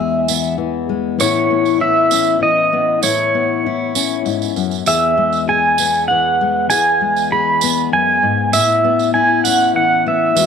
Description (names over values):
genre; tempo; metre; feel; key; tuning
acoustic folk duo or small band; 98 BPM; 3/4; straight; unclear; A4 = 438 Hz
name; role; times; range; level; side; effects
pedal steel guitar; melody; 0.0-10.5 s; C#5 to B5; -14 LUFS; right 2 dB; none
fingerpicked steel-string acoustic guitar; accompaniment; 0.0-10.5 s; E2 to G#4; -18 LUFS; left 10 dB; none
tambourine; percussion; 0.3-10.5 s; none; -21 LUFS; right 14 dB; none
room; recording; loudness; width
wet spring reverb, RT60 1.6 s, small room ambience; 1960s-style stereo with parts hard left and right; -13 LUFS; side -6 dB against mid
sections
0.0-10.5 A section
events
none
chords
0.0 E; 1.2 Aadd9; 4.9 E; 8.5 Aadd9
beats
0.59 | 1.20 1.81 2.42 | 3.03 3.64 4.25 | 4.87 5.48 6.09 | 6.70 7.31 7.92 | 8.53 9.14 9.75 | 10.36